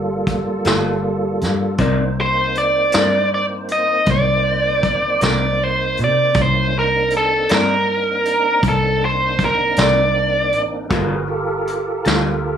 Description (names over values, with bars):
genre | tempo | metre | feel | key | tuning
slow blues | 53 BPM (dotted quarters) | 12/8 | straight | unclear | A4 = 440 Hz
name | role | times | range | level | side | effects
tonewheel organ | sustained chords | 0.0-12.6 s | G3 to C5 | -24 LUFS | right 2 dB | slow rotary speaker, chorus vibrato
vintage muted fingered electric bass | bass | 0.0-12.6 s | G1 to C3 | -22 LUFS | equal | none
vintage brush drum kit | drums | 0.3-12.2 s | hi-hat, kick drum, snare drum | -22 LUFS | equal | none
electric guitar through a small old amp | accompaniment | 0.7-12.3 s | G3 to D5 | -22 LUFS | left 6 dB | harmonic tremolo
biting lead guitar | melody | 2.2-10.6 s | A4 to Eb5 | -16 LUFS | right 1 dB | overdrive
room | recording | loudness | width
light reverb | studio reverb | -15 LUFS | side -8 dB against mid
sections
0.0-12.6 A section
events
none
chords
0.0 Gm9; 1.8 Cm9; 10.9 Gm9